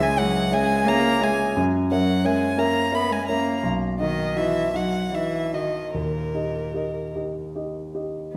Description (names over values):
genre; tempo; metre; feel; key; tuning
classical, slow romantic movement for piano trio; 49-59 BPM (dotted quarters); 6/8; rubato; unclear; A4 = 440 Hz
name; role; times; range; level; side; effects
rich violin; melody; 0.0-7.1 s; A#4 to B5; -28 LUFS; equal; none
warm cello; second line; 0.0-7.2 s; A#2 to B3; -30 LUFS; equal; none
dark concert grand piano; accompaniment; 0.0-8.4 s; B1 to E5; -26 LUFS; equal; none
room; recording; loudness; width
moderate concert hall reverb, RT60 1.9 s; none; -23 LUFS; mono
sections
0.0-8.4 A section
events
none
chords
0.0 C#m; 1.6 F#7; 3.6 B; 5.9 D#